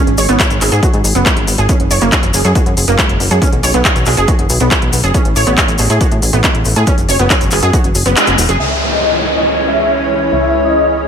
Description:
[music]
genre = uplifting trance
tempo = 139 BPM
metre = 4/4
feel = straight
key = C# minor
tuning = A4 = 440 Hz
[part]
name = plucky analog bass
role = bass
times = 0.1-11.1 s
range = E1 to A2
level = -15 LUFS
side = equal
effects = sidechain pumping
[part]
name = techno drum kit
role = drums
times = 0.1-8.6 s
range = handclaps, hi-hat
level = -16 LUFS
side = equal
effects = low-pass filter on hats, studio reverb, low-pass filter on snare
[part]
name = wide unison pluck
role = arpeggios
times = 0.2-8.5 s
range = G#3 to C#5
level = -16 LUFS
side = right 2 dB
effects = lush chorus, sidechain pumping, ping-pong delay
[part]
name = maracas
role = percussion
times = 0.2-8.6 s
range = none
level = -22 LUFS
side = left 4 dB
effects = none
[part]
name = electronic kick drum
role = drums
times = 0.4-7.8 s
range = none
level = -14 LUFS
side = equal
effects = studio reverb
[part]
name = supersaw chords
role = melody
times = 8.6-11.0 s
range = D#5 to E5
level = -15 LUFS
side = left 2 dB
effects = lush chorus, cassette tape, sidechain pumping, low-pass filter, ping-pong delay
[part]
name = lush unison pad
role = sustained chords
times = 8.8-11.1 s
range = E3 to C#4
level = -16 LUFS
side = equal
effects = chorus, sidechain pumping
[part]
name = downlifter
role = sound effects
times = 8.6-11.1 s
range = none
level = -18 LUFS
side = equal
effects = none
[sound]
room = moderate plate reverb, RT60 1.4 s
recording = dreamy mix soaked in reverb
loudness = -10 LUFS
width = side -7 dB against mid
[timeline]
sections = 0.0-8.6 A section; 8.6-11.1 B section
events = kick drops out 8.2-8.6; band accent 8.2; filter sweep on supersaw synth 8.6-11.1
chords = 0.0 G#m; 1.7 F#add9; 3.4 B5; 5.1 Aadd9; 6.9 F#5; 8.6 C#m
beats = 0.40 0.83 1.26 | 1.69 2.12 2.55 2.99 | 3.42 3.85 4.28 4.71 | 5.14 5.58 6.01 6.44 | 6.87 7.30 7.73 8.17 | 8.60 9.03 9.46 9.89 | 10.32 10.76

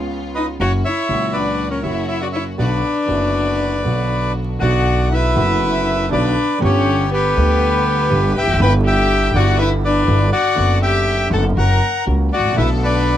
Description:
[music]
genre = tango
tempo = 120 BPM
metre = 4/4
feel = rubato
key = B minor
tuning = A4 = 441 Hz
[part]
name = dark grand piano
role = accompaniment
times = 0.0-13.2 s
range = F#1 to G4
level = -22 LUFS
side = right 2 dB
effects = none
[part]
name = rich studio string section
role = stabs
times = 0.0-4.6, 12.6-13.2 s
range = F#3 to A4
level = -31 LUFS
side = left 3 dB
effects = none
[part]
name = upright bass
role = bass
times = 0.0-13.2 s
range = E1 to D2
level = -19 LUFS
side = equal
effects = none
[part]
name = bandoneon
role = melody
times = 0.3-13.2 s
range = G4 to B5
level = -19 LUFS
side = equal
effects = none
[part]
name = dark violin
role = second line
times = 0.4-13.2 s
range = B3 to B4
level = -22 LUFS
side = left 4 dB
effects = none
[sound]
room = light reverb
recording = close, detailed microphones, vinyl crackle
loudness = -14 LUFS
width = side -11 dB against mid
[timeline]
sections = 0.0-4.6 A section; 4.6-13.2 A section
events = none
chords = 0.0 C#7; 0.6 F#; 2.6 Bm; 6.6 G; 8.6 Em7/G; 10.6 Bm/F#; 11.6 F#; 12.6 Bm7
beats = 0.10 | 0.60 1.10 1.59 2.09 | 2.59 3.09 3.59 4.11 | 4.61 5.12 5.62 6.12 | 6.62 7.12 7.62 8.11 | 8.60 9.09 9.59 10.08 | 10.57 11.07 11.57 12.07 | 12.58 13.08

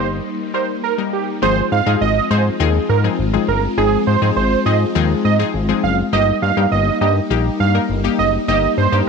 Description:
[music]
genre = pop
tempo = 102 BPM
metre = 4/4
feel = straight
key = unclear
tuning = A4 = 443 Hz
[part]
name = wide unison lead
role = melody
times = 0.0-9.0 s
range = G4 to F5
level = -19 LUFS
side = right 10 dB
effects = low-pass filter, slapback echo
[part]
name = analog pluck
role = accompaniment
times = 0.0-9.1 s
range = F3 to Bb4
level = -22 LUFS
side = left 13 dB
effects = chorus, low-pass filter
[part]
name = string machine, violas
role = sustained chords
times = 0.0-9.1 s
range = G3 to F4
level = -23 LUFS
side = left 1 dB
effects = ensemble chorus, low-pass filter
[part]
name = fat analog bass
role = bass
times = 0.0-9.0 s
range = Gb1 to Ab2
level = -18 LUFS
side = left 1 dB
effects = none
[sound]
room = moderate echo chamber reverb, RT60 2.4 s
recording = 1960s-style stereo with parts hard left and right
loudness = -14 LUFS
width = side -5 dB against mid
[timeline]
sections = 0.0-1.4 A section; 1.4-9.1 B section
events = drop 1.4-9.1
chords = 0.0 Eb/G; 1.4 Ab6; 6.1 Eb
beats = 0.25 0.83 | 1.42 2.01 2.60 3.19 | 3.78 4.37 4.95 5.54 | 6.13 6.72 7.31 7.89 | 8.48 9.07

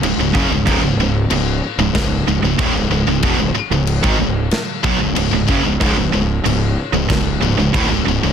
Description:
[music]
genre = heavy metal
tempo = 93 BPM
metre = 4/4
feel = straight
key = unclear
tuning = A4 = 440 Hz
[part]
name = heavy high-gain guitar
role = riff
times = 0.0-8.3 s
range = C#2 to F#3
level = -21 LUFS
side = left 10 dB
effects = distortion
[part]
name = raw garage guitar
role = riff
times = 0.0-8.3 s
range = C#2 to F#3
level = -23 LUFS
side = left 1 dB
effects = overdrive
[part]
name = tight distorted guitar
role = riff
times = 0.0-8.3 s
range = C#2 to F#3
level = -20 LUFS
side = right 9 dB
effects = distortion
[part]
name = fuzz fingered electric bass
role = bass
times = 0.0-8.3 s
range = C#1 to B1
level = -20 LUFS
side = equal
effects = overdrive
[part]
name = modern studio drum kit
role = drums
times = 0.0-7.9 s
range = crash cymbal, kick drum, snare drum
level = -22 LUFS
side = left 1 dB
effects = none
[sound]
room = small room ambience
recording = dense, heavily limited modern master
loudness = -14 LUFS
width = side -8 dB against mid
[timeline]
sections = 0.0-8.3 A section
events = none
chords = 0.0 C#5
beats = 0.03 | 0.67 1.31 1.95 2.60 | 3.24 3.88 4.52 5.17 | 5.81 6.46 7.10 7.74

